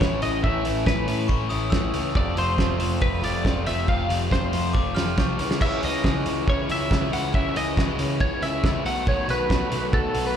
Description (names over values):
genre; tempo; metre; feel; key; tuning
indie rock; 139 BPM; 4/4; straight; unclear; A4 = 440 Hz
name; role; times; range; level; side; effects
twelve-string electric guitar; melody; 0.0-10.4 s; A4 to F#5; -28 LUFS; equal; spring reverb, slapback echo
overdriven semi-hollow guitar; riff; 0.0-10.4 s; F2 to F#4; -28 LUFS; left 10 dB; slapback echo
overdriven semi-hollow guitar; riff; 0.0-10.4 s; F2 to F#4; -31 LUFS; right 10 dB; lush chorus, slapback echo
growling picked electric bass; bass; 0.0-10.4 s; F1 to C#3; -28 LUFS; equal; overdrive
cloth-damped thuddy drum kit; drums; 0.0-10.2 s; crash cymbal, hi-hat, kick drum, snare drum; -25 LUFS; right 1 dB; none
glockenspiel with hard plastic mallets; second line; 1.3-2.0, 4.7-5.5 s; C#6 to F6; -36 LUFS; left 2 dB; slapback echo
room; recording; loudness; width
studio reverb; live gig heard through the venue's PA, club reverb; -21 LUFS; side -9 dB against mid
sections
0.0-10.4 A section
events
none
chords
0.0 A; 2.2 F6; 5.4 C#m; 8.8 B7